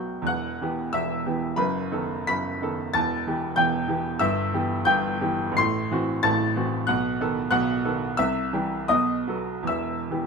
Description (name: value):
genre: classical, romantic character piece for solo piano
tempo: 70-97 BPM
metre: 2/4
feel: rubato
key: E minor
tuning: A4 = 438 Hz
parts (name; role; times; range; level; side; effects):
- clear baby grand piano; solo; 0.0-10.3 s; E1 to C7; -23 LUFS; equal; none
room: light reverb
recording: minimal, uncompressed stereo recording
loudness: -22 LUFS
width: side -4 dB against mid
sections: 0.3-10.3 A section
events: none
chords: 0.3 Em; 1.6 B7/F#; 3.0 Em; 4.2 Em/G; 5.6 F#m7b5/A; 6.9 B7; 8.2 C; 8.9 B7; 9.7 Em